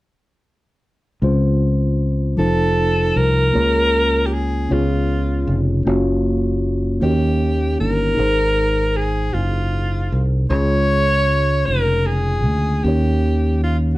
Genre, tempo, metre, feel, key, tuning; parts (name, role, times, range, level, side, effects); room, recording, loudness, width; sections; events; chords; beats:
gospel; 52 BPM (dotted quarters); 6/8; straight; Db major; A4 = 440 Hz
mellow tine electric piano; accompaniment; 1.2-14.0 s; Ab2 to Db5; -21 LUFS; equal
fingered electric bass; bass; 1.2-14.0 s; F1 to Eb2; -19 LUFS; equal
breathy alto saxophone; melody; 2.4-14.0 s; F4 to Db5; -20 LUFS; equal
moderate studio reverb, RT60 0.8 s; band playing live in one room; -16 LUFS; side -18 dB against mid
1.2-14.0 A section
1.2 Dbmaj7; 2.4 F7; 3.5 Bbm7/Db; 4.7 Db7; 5.9 Gbmaj7; 7.0 Eb7; 8.2 Ab; 10.5 Db; 12.8 Eb7
| 1.23 2.38 | 3.54 4.70 | 5.86 7.02 | 8.18 9.35 | 10.51 11.68 | 12.84